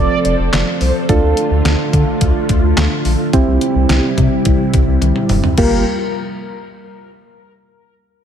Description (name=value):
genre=synth-pop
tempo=107 BPM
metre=4/4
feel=straight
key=unclear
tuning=A4 = 441 Hz
part: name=mellow synth brass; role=second line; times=0.0-0.9, 5.6-5.8 s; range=Bb4 to D5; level=-22 LUFS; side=right 2 dB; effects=chorus, digital delay
part: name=soft electric-piano-like synth keys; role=accompaniment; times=0.0-5.8 s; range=Bb3 to A4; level=-19 LUFS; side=right 3 dB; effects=chorus, low-pass filter
part: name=string machine, cellos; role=sustained chords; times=0.0-5.8 s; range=C3 to Bb4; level=-19 LUFS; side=equal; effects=ensemble chorus, low-pass filter
part: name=round analog bass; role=bass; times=0.0-5.8 s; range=F1 to D3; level=-16 LUFS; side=left 1 dB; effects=none
part: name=detuned 8-bit digital drum machine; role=drums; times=0.2-5.7 s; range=crash cymbal, handclaps, hi-hat, kick drum, snare drum, toms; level=-17 LUFS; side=equal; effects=overdrive
room=moderate concert hall reverb, RT60 2.2 s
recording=none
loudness=-12 LUFS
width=side -8 dB against mid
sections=0.0-5.6 A section; 5.6-7.8 B section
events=filter sweep 0.0-5.6; drum fill 5.0-5.6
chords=0.0 F; 1.1 Dm; 3.3 C; 5.6 Gm7